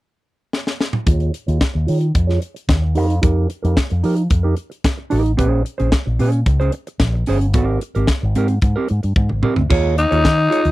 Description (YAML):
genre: disco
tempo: 111 BPM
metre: 4/4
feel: straight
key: unclear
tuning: A4 = 440 Hz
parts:
  - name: tight funk drum kit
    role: drums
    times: 0.5-10.7 s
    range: crash cymbal, hi-hat, kick drum, snare drum, toms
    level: -18 LUFS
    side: equal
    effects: none
  - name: mellow electric guitar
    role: accompaniment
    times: 1.1-10.7 s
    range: C4 to Db5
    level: -21 LUFS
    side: right 4 dB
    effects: low-pass filter
  - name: fingered electric bass with an envelope filter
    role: bass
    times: 1.1-10.7 s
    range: G1 to F3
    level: -17 LUFS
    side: equal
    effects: none
  - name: growling tenor saxophone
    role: melody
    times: 10.0-10.7 s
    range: Eb4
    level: -15 LUFS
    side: left 3 dB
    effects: none
room: little or no reverb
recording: dry, close 1970s-style studio recording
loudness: -15 LUFS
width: side -17 dB against mid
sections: 0.0-1.1 A section; 1.1-9.7 B section; 9.7-10.7 C section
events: drum fill 0.5-1.1, 9.2-9.7; filter sweep on clean electric guitar 1.1-9.7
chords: 0.0 N.C.; 1.1 Eb9sus4; 3.0 F9sus4; 5.4 Bbm9; 7.5 Abmaj9; 9.7 Eb9sus4